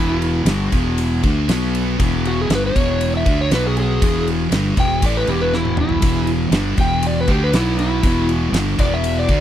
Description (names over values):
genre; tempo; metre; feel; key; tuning
blues rock power trio and southern rock; 119 BPM; 4/4; straight; unclear; A4 = 440 Hz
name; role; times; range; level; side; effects
overdriven slide guitar; melody; 0.0-9.4 s; E4 to G5; -22 LUFS; equal; none
sludgy distorted guitar; riff; 0.0-9.4 s; E2 to D4; -21 LUFS; equal; overdrive
fuzz fingered electric bass; bass; 0.0-9.4 s; E1 to D2; -21 LUFS; equal; overdrive
huge arena drum kit; drums; 0.2-9.4 s; kick drum, ride cymbal, snare drum, toms; -21 LUFS; equal; none
room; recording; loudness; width
little or no reverb; dry, close 1970s-style studio recording; -15 LUFS; side -11 dB against mid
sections
0.0-9.4 A section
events
electric slide guitar solo 0.0-9.4; drum fill 5.5-6.0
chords
0.0 E5; 1.5 B5; 2.0 E5; 3.5 B5; 4.0 E5; 7.5 B5; 8.0 E5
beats
0.47 0.98 1.49 | 1.99 2.50 3.01 3.51 | 4.02 4.52 5.03 5.53 | 6.03 6.54 7.04 7.54 | 8.04 8.54 9.05